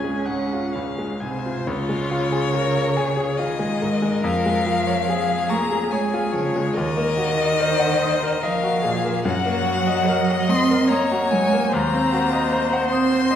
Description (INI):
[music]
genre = classical, slow romantic movement for piano quartet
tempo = 72 BPM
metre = 3/4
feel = uneven beats, rubato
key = Db major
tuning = A4 = 441 Hz
[part]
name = warm violin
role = melody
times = 0.0-13.4 s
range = Ab4 to C6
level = -24 LUFS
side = left 4 dB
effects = none
[part]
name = rich violin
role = second line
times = 0.0-13.4 s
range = F4 to Ab5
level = -26 LUFS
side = left 2 dB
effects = none
[part]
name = warm cello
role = second line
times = 0.0-13.4 s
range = C3 to Db4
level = -24 LUFS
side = right 4 dB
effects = none
[part]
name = bright grand piano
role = accompaniment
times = 0.0-13.4 s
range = Db2 to Eb6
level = -24 LUFS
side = left 1 dB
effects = none
[sound]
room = wet recital hall reverb, RT60 1.6 s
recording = heard from further back in the room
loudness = -19 LUFS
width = side -9 dB against mid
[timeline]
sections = 0.0-1.7 A section; 1.7-13.4 B section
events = none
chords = 0.0 Db; 4.2 Db/F; 6.8 Ebm; 9.2 Ebm/Gb; 11.7 Cdim/Eb